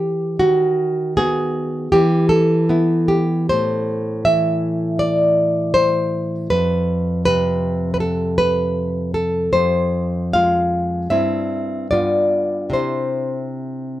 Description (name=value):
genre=romantic piece for solo classical guitar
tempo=70-81 BPM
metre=4/4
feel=rubato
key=unclear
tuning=A4 = 442 Hz
part: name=nylon-string guitar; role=solo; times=0.0-14.0 s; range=F2 to F5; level=-16 LUFS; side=equal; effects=none
room=moderate studio reverb, RT60 0.6 s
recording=band playing live in one room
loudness=-16 LUFS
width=side -14 dB against mid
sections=0.0-14.0 A section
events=none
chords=0.4 B/D#; 1.9 E5; 3.5 Am; 6.5 F5; 9.5 Fm; 11.1 C/G; 11.9 G7; 12.7 C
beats=| 0.40 1.16 1.91 2.67 | 3.49 4.25 5.00 5.76 | 6.52 7.26 8.00 8.76 | 9.53 10.34 11.11 11.91 | 12.73 13.58